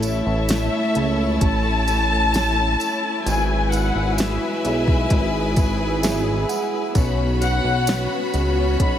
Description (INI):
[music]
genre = pop ballad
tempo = 65 BPM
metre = 4/4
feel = straight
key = A major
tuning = A4 = 441 Hz
[part]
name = warm studio violin section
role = melody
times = 0.0-9.0 s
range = E5 to B5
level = -24 LUFS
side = left 2 dB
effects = none
[part]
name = clear studio violin section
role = second line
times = 0.0-9.0 s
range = E4 to B5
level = -29 LUFS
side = left 2 dB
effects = tape echo
[part]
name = mellow tine electric piano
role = accompaniment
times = 0.0-9.0 s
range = G#3 to F#5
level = -28 LUFS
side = right 5 dB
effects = analog chorus
[part]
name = warm studio string section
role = sustained chords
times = 0.0-9.0 s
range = G#3 to B4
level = -27 LUFS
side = left 1 dB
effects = none
[part]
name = picked steel-string acoustic guitar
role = arpeggios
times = 0.0-9.0 s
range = G#2 to A4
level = -30 LUFS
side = left 5 dB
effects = ensemble chorus, tape echo
[part]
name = chorused synth bass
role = bass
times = 0.0-9.0 s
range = G#1 to C#2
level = -22 LUFS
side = equal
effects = none
[part]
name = smooth R&B drum kit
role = drums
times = 0.0-9.0 s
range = hi-hat, kick drum, snare drum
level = -24 LUFS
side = equal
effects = none
[part]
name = tambourine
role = percussion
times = 0.0-8.6 s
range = none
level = -35 LUFS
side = right 7 dB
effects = none
[sound]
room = moderate plate reverb, RT60 2.5 s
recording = dreamy mix soaked in reverb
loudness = -18 LUFS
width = side -10 dB against mid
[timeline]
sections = 0.0-9.0 A section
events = tine electric piano fill 5.6-7.0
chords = 0.0 A; 3.3 Eadd9/G#; 7.0 Bsus2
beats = 0.49 1.41 2.34 | 3.26 4.18 5.11 6.03 | 6.95 7.87 8.80